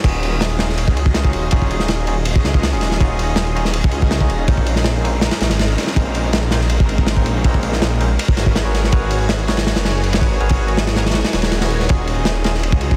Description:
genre	drum and bass, jungle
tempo	162 BPM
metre	4/4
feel	straight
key	Eb minor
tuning	A4 = 440 Hz
part	lush unison pad	sustained chords	0.3-13.0 s	Ab3 to Ab5	-29 LUFS	equal	chorus, phaser, vintage 12-bit sampler grit
part	barky tine electric piano	stabs	0.0-13.0 s	Ab3 to Db5	-28 LUFS	equal	low-pass filter, dub echo
part	detuned saw bass	bass	0.0-13.0 s	Eb1 to Db2	-22 LUFS	equal	tube saturation
part	crunchy breakbeat drum kit	drums	0.0-13.0 s	crash cymbal, kick drum, ride cymbal, snare drum	-20 LUFS	equal	none
room	small room ambience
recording	dense, heavily limited modern master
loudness	-17 LUFS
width	mono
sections	0.0-13.0 A section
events	drop 0.0-13.0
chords	0.0 Ebm11; 4.5 Bbm11; 8.2 Abm11; 11.9 Ebm11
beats	| 0.04 0.41 0.78 1.15 | 1.52 1.89 2.26 2.63 | 3.00 3.37 3.74 4.11 | 4.48 4.85 5.22 5.59 | 5.96 6.34 6.71 7.08 | 7.45 7.82 8.19 8.56 | 8.93 9.30 9.67 10.04 | 10.41 10.78 11.15 11.52 | 11.89 12.26 12.63

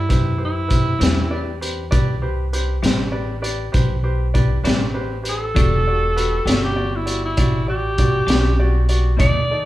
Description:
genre	slow blues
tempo	66 BPM (dotted quarters)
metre	12/8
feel	straight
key	E minor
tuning	A4 = 437 Hz
part	breathy tenor saxophone	melody	0.0-9.7 s	E4 to D5	-22 LUFS	right 1 dB	none
part	upright bass	bass	0.0-9.7 s	E1 to F#2	-22 LUFS	equal	none
part	clear concert grand piano	accompaniment	0.1-9.7 s	D#4 to D5	-27 LUFS	left 1 dB	none
part	crunchy breakbeat drum kit	drums	0.1-9.3 s	hi-hat, kick drum, snare drum	-20 LUFS	equal	none
part	clean electric guitar	accompaniment	1.0-9.4 s	A2 to G4	-28 LUFS	left 3 dB	harmonic tremolo
room	light reverb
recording	band playing live in one room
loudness	-16 LUFS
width	side -15 dB against mid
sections	0.0-9.7 A section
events	tenor saxophone solo 0.0-9.7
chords	0.0 Am7; 5.6 Em7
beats	0.10 1.00 | 1.92 2.83 3.73 4.64 | 5.55 6.46 7.37 8.28 | 9.19

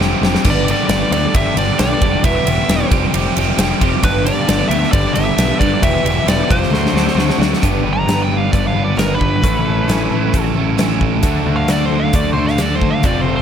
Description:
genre	classic rock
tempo	133 BPM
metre	4/4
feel	straight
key	G mixolydian, G lydian from 7.6 s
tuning	A4 = 441 Hz
part	picked steel-string acoustic guitar	accompaniment	0.0-13.4 s	G2 to A4	-26 LUFS	right 6 dB	none
part	crunchy overdriven guitar	riff	0.0-13.4 s	E2 to A4	-22 LUFS	left 16 dB	spring reverb
part	distorted electric guitar	riff	0.0-13.4 s	E2 to B4	-21 LUFS	right 12 dB	distortion
part	growling picked electric bass	bass	0.0-13.4 s	E1 to G2	-20 LUFS	equal	overdrive
part	huge arena drum kit	drums	0.0-13.1 s	crash cymbal, hi-hat, kick drum, ride cymbal, snare drum	-17 LUFS	equal	none
part	nasal lead guitar with a parked wah	melody	0.5-13.4 s	Bb4 to Bb5	-20 LUFS	equal	overdrive, slapback echo
room	little or no reverb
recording	none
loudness	-13 LUFS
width	side -8 dB against mid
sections	0.0-7.6 A section; 7.6-13.4 B section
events	drum fill 0.0-0.5, 6.7-7.6; lead electric guitar solo 7.6-13.4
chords	0.5 G; 2.2 Em; 2.9 Fsus2; 4.0 G; 5.8 Em; 6.5 Fsus2; 6.7 D7; 7.6 G; 9.4 A; 11.2 D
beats	0.00 | 0.45 0.90 1.34 1.79 | 2.24 2.69 3.13 3.58 | 4.03 4.48 4.93 5.38 | 5.83 6.28 6.72 7.17 | 7.62 8.08 8.53 8.98 | 9.43 9.88 10.33 10.78 | 11.23 11.69 12.14 12.59 | 13.04

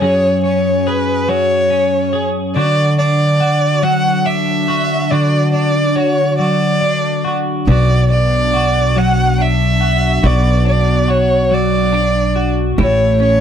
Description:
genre	six-eight pop ballad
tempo	47 BPM (dotted quarters)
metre	6/8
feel	straight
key	unclear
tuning	A4 = 443 Hz
part	rich violin	melody	0.0-13.4 s	B4 to F#5	-16 LUFS	equal	none
part	twelve-string electric guitar	accompaniment	0.0-13.4 s	F#2 to G#4	-16 LUFS	equal	double-tracked left and right
part	upright bass	bass	7.7-13.4 s	A1 to B1	-15 LUFS	equal	none
room	studio ambience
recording	dry, close 1970s-style studio recording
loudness	-12 LUFS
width	side -8 dB against mid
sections	0.0-13.4 A section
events	none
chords	0.0 F#sus2; 2.6 D; 7.7 Bm; 12.8 A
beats	| 0.02 1.28 | 2.55 3.83 | 5.11 6.39 | 7.67 8.96 | 10.23 11.51 | 12.79

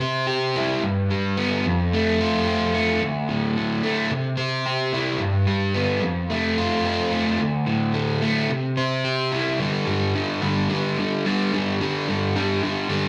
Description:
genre	rock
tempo	109 BPM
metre	4/4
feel	straight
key	unclear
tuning	A4 = 440 Hz
part	crunchy overdriven guitar	solo	0.0-13.1 s	D2 to C5	-23 LUFS	equal	none
room	wet large studio reverb, RT60 0.8 s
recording	band playing live in one room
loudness	-23 LUFS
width	mono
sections	0.0-9.6 A section; 9.6-13.1 B section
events	none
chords	0.0 C; 0.8 G; 1.7 F; 3.0 D5; 4.1 C; 5.2 G; 6.0 F; 7.4 D5; 8.5 C; 9.6 G5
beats	0.29 | 0.84 1.38 1.93 2.48 | 3.02 3.57 4.12 4.67 | 5.22 5.76 6.31 6.86 | 7.41 7.96 8.51 9.06 | 9.61 10.15 10.70 11.25 | 11.80 12.35 12.90

